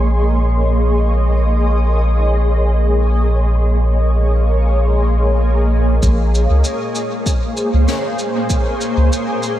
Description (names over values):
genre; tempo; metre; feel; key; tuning
ambient dub; 97 BPM; 4/4; swing 54% on 16ths; Bb minor; A4 = 436 Hz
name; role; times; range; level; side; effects
granular cloud pad; sustained chords; 0.0-9.6 s; Bb3 to Eb5; -19 LUFS; equal; built-in reverb, ensemble chorus
soft dub sub bass; bass; 0.0-9.1 s; Bb1 to Db2; -14 LUFS; equal; none
bubbling stepped-filter texture; texture; 0.0-6.0 s; C6; -32 LUFS; equal; chorus, built-in reverb
electronic kick drum; drums; 6.0-8.6 s; none; -18 LUFS; equal; none
shaker and snare drum; drums; 6.0-9.6 s; none; -27 LUFS; left 1 dB; low-pass filter on snare, low-pass filter on perc, low-pass filter on room, dub echo
room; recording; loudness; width
moderate lush hall reverb, RT60 2.9 s; dreamy mix soaked in reverb; -13 LUFS; side -13 dB against mid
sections
0.0-6.0 A section; 6.0-9.6 B section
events
none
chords
0.0 Bbm9